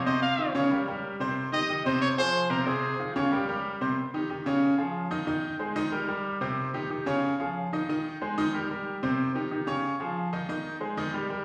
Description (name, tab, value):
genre	latin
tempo	184 BPM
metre	4/4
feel	straight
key	Ab major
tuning	A4 = 443 Hz
part	clear trumpet	melody	0.0-3.6 s	F4 to F5	-31 LUFS	equal	none
part	bright grand piano	accompaniment	0.0-11.4 s	C3 to Eb5	-30 LUFS	equal	none
room	wet recital hall reverb, RT60 1.3 s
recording	recorded in a church or concert hall, small room ambience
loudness	-29 LUFS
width	mono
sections	0.0-4.0 A section; 4.0-11.4 A section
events	none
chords	0.1 F5; 0.7 Gmadd11; 1.4 Cm; 2.0 Bb7sus2/C; 2.7 Fm7; 3.3 Gmadd11; 4.0 Eb7; 4.6 Db; 5.3 Ab/Eb; 5.9 Gmadd11; 6.6 Cm; 7.2 Db; 7.9 Ab/Eb; 8.5 Gmadd11; 9.2 Cm; 9.8 Db; 10.5 Ab/Eb